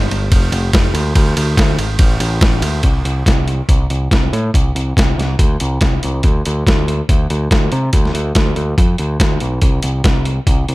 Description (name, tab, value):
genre	indie rock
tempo	142 BPM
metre	4/4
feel	straight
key	A minor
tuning	A4 = 445 Hz
part	growling picked electric bass	bass	0.0-10.7 s	F1 to C3	-17 LUFS	equal	overdrive
part	boom bap sampler-style drum kit	drums	0.1-10.7 s	hi-hat, kick drum, ride cymbal, snare drum	-14 LUFS	equal	none
room	little or no reverb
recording	none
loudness	-12 LUFS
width	side -20 dB against mid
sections	0.0-2.8 A section; 2.8-10.7 B section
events	none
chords	none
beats	0.31 0.73 | 1.16 1.58 2.00 2.42 | 2.84 3.27 3.69 4.11 | 4.54 4.96 5.39 5.81 | 6.24 6.66 7.08 7.51 | 7.93 8.36 8.78 9.20 | 9.63 10.05 10.48